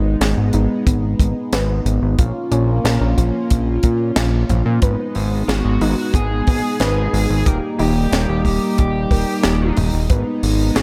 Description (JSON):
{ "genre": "synthwave", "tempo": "91 BPM", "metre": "4/4", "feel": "straight", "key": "G# dorian", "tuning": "A4 = 439 Hz", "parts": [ { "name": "chorused pulse-width pad", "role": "sustained chords", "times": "0.0-10.8 s", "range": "G3 to E#4", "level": "-24 LUFS", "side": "equal", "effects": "sidechain pumping" }, { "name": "fat analog bass", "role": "bass", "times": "0.0-10.8 s", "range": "D#1 to A#2", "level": "-21 LUFS", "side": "equal", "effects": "sidechain pumping" }, { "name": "warbly dusty pluck", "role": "arpeggios", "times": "0.2-10.8 s", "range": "E#3 to B4", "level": "-29 LUFS", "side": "equal", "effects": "chorus, cassette tape, analog delay" }, { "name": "tight funk drum kit", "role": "drums", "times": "0.2-10.8 s", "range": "hi-hat, snare drum, toms", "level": "-26 LUFS", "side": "equal", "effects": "none" }, { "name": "kick drum", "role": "drums", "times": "0.9-10.2 s", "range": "none", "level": "-18 LUFS", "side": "equal", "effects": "none" }, { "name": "bluesy overdriven lead guitar", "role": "melody", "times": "5.5-10.8 s", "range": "F#4 to A#4", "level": "-28 LUFS", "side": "equal", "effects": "distortion, analog delay" } ], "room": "light reverb, small room reverb", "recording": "none", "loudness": "-18 LUFS", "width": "mono", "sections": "0.0-10.8 A section", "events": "none", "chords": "0.0 G#m; 2.2 A#m; 4.8 G#m; 7.5 D#; 10.1 G#m" }